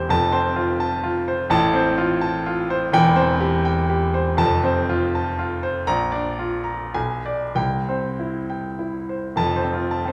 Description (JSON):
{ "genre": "classical, romantic character piece for solo piano", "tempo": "92-129 BPM", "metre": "3/4", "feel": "rubato", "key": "F major", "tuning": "A4 = 441 Hz", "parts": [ { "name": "warm baby grand piano", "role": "solo", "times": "0.0-10.1 s", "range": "E1 to Bb5", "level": "-22 LUFS", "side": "equal", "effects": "none" } ], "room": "wet recital hall reverb, RT60 1.6 s", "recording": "recorded in a church or concert hall", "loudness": "-22 LUFS", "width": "mono", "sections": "0.0-9.4 A section", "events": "none", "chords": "0.1 F; 1.5 F/A; 2.9 C/E; 4.4 F; 5.9 Bb; 6.9 Bm6; 7.6 C; 9.4 F" }